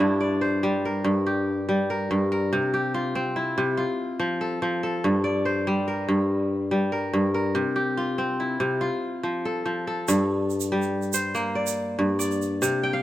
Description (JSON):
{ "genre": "west african traditional, West African string and xylophone music", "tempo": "95 BPM (dotted quarters)", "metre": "12/8", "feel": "straight", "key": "G dorian", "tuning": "A4 = 439 Hz", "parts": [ { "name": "kora", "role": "arpeggios", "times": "0.0-13.0 s", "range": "G2 to G5", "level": "-23 LUFS", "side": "equal", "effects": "none" }, { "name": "egg shaker", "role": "percussion", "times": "10.1-12.7 s", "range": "none", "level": "-31 LUFS", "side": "right 8 dB", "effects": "none" } ], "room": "light reverb", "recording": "none", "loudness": "-23 LUFS", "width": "side -14 dB against mid", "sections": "0.0-10.1 A section; 10.1-13.0 B section", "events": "kora fill 12.8", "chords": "0.0 Gm; 2.5 C; 3.8 F; 5.0 Gm; 7.6 C; 8.8 F; 10.1 Gm" }